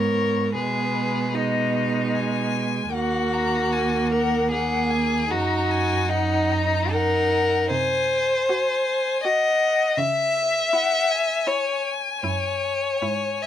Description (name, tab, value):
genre	classical, slow romantic movement for string quartet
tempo	70-82 BPM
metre	3/4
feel	rubato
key	C# minor from 7.7 s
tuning	A4 = 440 Hz
part	rich violin	melody	0.0-13.5 s	B4 to A#5	-28 LUFS	left 7 dB	none
part	warm violin	second line	0.0-13.5 s	D#4 to E5	-22 LUFS	left 2 dB	none
part	rich viola	accompaniment	0.0-13.5 s	G#3 to F#4	-28 LUFS	right 3 dB	none
part	clear cello	bass	0.0-13.5 s	D#2 to C#3	-27 LUFS	right 4 dB	none
room	light reverb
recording	close, detailed microphones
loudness	-20 LUFS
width	side -10 dB against mid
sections	0.0-13.5 A section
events	none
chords	0.0 G#m; 0.5 G#m/B; 2.9 D#m; 5.3 D#m/F#; 7.7 G#7/B#; 10.0 C#m; 12.2 F#5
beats	| 0.55 1.34 2.15 | 2.94 3.73 4.52 | 5.31 6.10 6.93 | 7.71 8.49 9.24 | 9.98 10.73 11.47 | 12.24 13.02